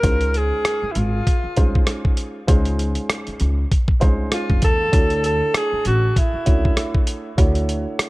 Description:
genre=hip hop, jazz-hop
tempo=98 BPM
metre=4/4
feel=swing 57% on 16ths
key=unclear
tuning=A4 = 445 Hz
part: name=breathy alto saxophone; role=melody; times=0.0-7.1 s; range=Fb4 to Bb4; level=-23 LUFS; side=equal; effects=dub echo
part: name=dark concert grand piano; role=accompaniment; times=0.0-8.1 s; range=Ab3 to C#5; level=-26 LUFS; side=right 1 dB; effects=none
part: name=upright bass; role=bass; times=0.0-7.8 s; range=F1 to Eb2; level=-21 LUFS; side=equal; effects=none
part: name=dusty soul sampler-style drum kit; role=drums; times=0.0-8.1 s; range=hi-hat, kick drum, rim click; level=-18 LUFS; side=equal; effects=none
room=small room reverb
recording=echo-heavy mix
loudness=-17 LUFS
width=side -20 dB against mid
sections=0.0-8.1 A section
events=none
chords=0.0 Dbmaj9; 4.9 Dmaj9

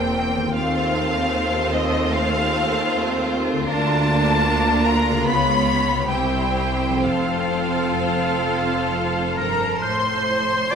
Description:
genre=classical, slow romantic movement for symphony orchestra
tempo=61-79 BPM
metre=4/4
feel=rubato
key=F major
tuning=A4 = 440 Hz
part: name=rich studio violin section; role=melody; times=0.0-10.7 s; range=Eb5 to C6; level=-24 LUFS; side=left 2 dB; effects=none
part: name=clear studio violin section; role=second line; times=0.0-10.5 s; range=C4 to Db5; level=-26 LUFS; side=left 1 dB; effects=none
part: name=rich symphonic viola section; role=accompaniment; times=0.0-10.7 s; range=A3 to C5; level=-24 LUFS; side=right 2 dB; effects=none
part: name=concert harp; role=arpeggios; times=0.0-10.8 s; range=C3 to D5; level=-31 LUFS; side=left 8 dB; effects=none
part: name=clear studio double bass section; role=bass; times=0.0-10.5 s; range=E1 to Eb2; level=-28 LUFS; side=right 3 dB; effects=none
part: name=rich symphonic cello section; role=bass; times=0.0-10.7 s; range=C2 to A2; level=-27 LUFS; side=right 1 dB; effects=none
part: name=warm oboe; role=second line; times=9.4-10.8 s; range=Bb4 to D5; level=-24 LUFS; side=equal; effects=none
room=wet scoring stage reverb, RT60 2.0 s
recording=minimal, uncompressed stereo recording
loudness=-18 LUFS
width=side -6 dB against mid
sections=0.0-10.7 A section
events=none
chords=0.0 C7/E; 0.6 F7/Eb; 3.7 Bb/D; 5.3 Db7; 6.1 C; 7.0 F

